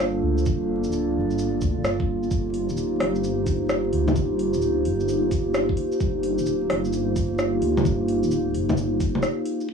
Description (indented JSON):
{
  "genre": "future garage",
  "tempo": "130 BPM",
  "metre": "4/4",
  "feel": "swing 65% on 16ths",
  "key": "unclear",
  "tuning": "A4 = 438 Hz",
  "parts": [
    { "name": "warbly tape-like pad", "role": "sustained chords", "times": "0.0-9.7 s", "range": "Bb3 to D5", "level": "-23 LUFS", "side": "equal", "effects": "chorus, built-in reverb, sidechain pumping" },
    { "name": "dark detuned saw bass", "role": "bass", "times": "0.0-9.2 s", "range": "D1 to D2", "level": "-28 LUFS", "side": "right 1 dB", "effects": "sidechain pumping" },
    { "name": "garage drum kit", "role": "drums", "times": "0.0-9.7 s", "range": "bongos, crash cymbal, hi-hat, rim click, shaker", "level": "-27 LUFS", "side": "left 1 dB", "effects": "cassette tape" },
    { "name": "electronic kick drum", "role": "drums", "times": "0.5-9.1 s", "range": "none", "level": "-25 LUFS", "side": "equal", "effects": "cassette tape" }
  ],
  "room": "wet booth ambience, RT60 0.3 s",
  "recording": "home recording on cassette, vinyl crackle, low-pass filter, small room ambience",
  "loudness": "-21 LUFS",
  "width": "side -6 dB against mid",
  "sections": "0.0-9.7 A section",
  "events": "break 9.2-9.7",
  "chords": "0.0 Bbmaj9; 2.3 Eb69"
}